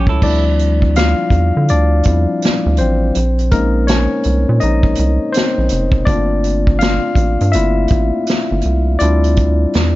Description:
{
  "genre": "R&B, neo-soul",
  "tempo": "82 BPM",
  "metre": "4/4",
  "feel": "swing 63% on 16ths",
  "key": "D minor",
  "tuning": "A4 = 440 Hz",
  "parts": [
    { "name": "barky tine electric piano", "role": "accompaniment", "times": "0.0-10.0 s", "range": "F3 to F5", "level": "-16 LUFS", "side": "left 2 dB", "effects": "overdrive" },
    { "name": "rubbery square bass", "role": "bass", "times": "0.0-10.0 s", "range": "F1 to D3", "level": "-15 LUFS", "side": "equal", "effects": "none" },
    { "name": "unplugged drum kit", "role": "drums", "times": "0.1-10.0 s", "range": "crash cymbal, hi-hat, kick drum, snare drum", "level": "-17 LUFS", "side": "right 1 dB", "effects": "none" }
  ],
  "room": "studio reverb",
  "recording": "dark, warm production, nothing above 7.5 kHz",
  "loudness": "-12 LUFS",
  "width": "side -17 dB against mid",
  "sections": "0.2-10.0 A section",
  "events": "tine electric piano solo 0.2-10.0",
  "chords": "0.2 Dm11; 3.1 Bbm11; 6.1 Gm11; 9.0 Dm11",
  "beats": "| 0.22 0.95 1.68 2.42 | 3.15 3.88 4.61 5.34 | 6.07 6.80 7.54 8.27 | 9.00 9.73"
}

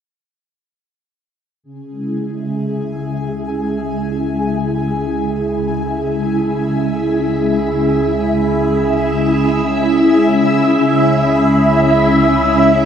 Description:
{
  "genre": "ambient, sequencer-driven space music",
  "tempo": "free time",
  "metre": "none",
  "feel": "none",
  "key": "C# minor",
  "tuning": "A4 = 440 Hz",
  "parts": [
    { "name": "phased string machine", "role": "sustained chords", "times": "1.6-12.9 s", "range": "C#3 to E5", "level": "-14 LUFS", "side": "equal", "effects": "ensemble chorus, phaser" },
    { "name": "analog drone", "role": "bass", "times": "3.0-12.9 s", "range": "C#2", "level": "-30 LUFS", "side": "equal", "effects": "chorus" },
    { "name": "bubbling stepped-filter texture", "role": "texture", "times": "2.0-12.9 s", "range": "G#4 to B5", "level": "-22 LUFS", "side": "right 3 dB", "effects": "chorus, built-in reverb" }
  ],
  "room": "wet huge ambient reverb, RT60 7.5 s",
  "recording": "none",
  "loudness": "-13 LUFS",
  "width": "side -8 dB against mid",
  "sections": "1.6-12.9 A section",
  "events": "fade-in on synth drone 1.6-12.9; filter sweep on string machine 1.6-12.9",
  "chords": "1.6 C#m",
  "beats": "free time"
}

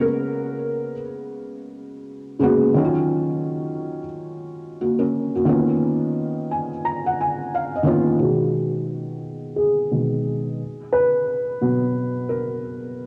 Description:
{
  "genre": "hip hop",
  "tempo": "88 BPM",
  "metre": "4/4",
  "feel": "swing 61% on 16ths",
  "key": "unclear",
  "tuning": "A4 = 440 Hz",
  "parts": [
    { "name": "felt-muted upright piano", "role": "melody", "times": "0.0-1.0 s", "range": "Bb4", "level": "-29 LUFS", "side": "equal", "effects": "cassette tape, tape echo" },
    { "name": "felt-muted upright piano", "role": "accompaniment", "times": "0.0-13.1 s", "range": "B2 to Bb5", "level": "-23 LUFS", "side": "equal", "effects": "cassette tape, low-pass filter" }
  ],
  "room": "moderate lush hall reverb, RT60 2.4 s",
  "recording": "home recording on cassette",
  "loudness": "-22 LUFS",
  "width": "mono",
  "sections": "0.0-8.2 A section; 8.2-13.1 B section",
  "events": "felt piano fill 6.2-8.2; felt piano solo 8.2-13.1; filter sweep on felt piano 8.2-13.1",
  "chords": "0.0 Abm11; 2.7 Ebm9; 5.5 Db13; 8.2 B6; 10.6 Gbadd11",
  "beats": "| 0.02 0.70 1.39 2.07 | 2.75 3.43 4.11 4.79 | 5.48 6.16 6.84 7.52 | 8.20 8.88 9.57 10.25 | 10.93 11.61 12.29 12.98"
}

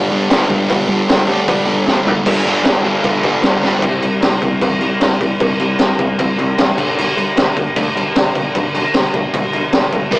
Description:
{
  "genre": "punk rock",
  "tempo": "153 BPM",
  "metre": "4/4",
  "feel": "straight",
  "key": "G major",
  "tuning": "A4 = 440 Hz",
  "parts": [
    { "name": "distorted electric guitar", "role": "riff", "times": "0.0-10.2 s", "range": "G2 to C4", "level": "-20 LUFS", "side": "left 1 dB", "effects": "distortion" },
    { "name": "sludgy distorted guitar", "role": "riff", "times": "0.0-3.8, 10.1-10.2 s", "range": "G2 to C4", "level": "-17 LUFS", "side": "right 2 dB", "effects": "overdrive" },
    { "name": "growling picked electric bass", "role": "bass", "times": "0.0-10.2 s", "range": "E1 to E2", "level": "-23 LUFS", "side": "equal", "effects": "overdrive" },
    { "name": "raw garage drum kit", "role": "drums", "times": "0.3-10.2 s", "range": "crash cymbal, hi-hat, kick drum, snare drum, toms", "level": "-15 LUFS", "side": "equal", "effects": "none" }
  ],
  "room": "light reverb",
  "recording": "rough rehearsal-room recording, tube saturation, small speaker sound",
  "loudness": "-12 LUFS",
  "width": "side -22 dB against mid",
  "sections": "0.0-2.3 A section; 2.3-3.8 B section; 3.8-10.2 C section",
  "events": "drum fill 1.9-2.3, 3.6",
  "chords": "0.0 G5; 3.8 C5; 6.8 G/B",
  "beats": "0.31 | 0.70 1.09 1.48 1.87 | 2.27 2.66 3.05 3.44 | 3.83 4.23 4.62 5.01 | 5.41 5.80 6.19 6.58 | 6.98 7.37 7.76 8.16 | 8.55 8.94 9.34 9.73 | 10.12"
}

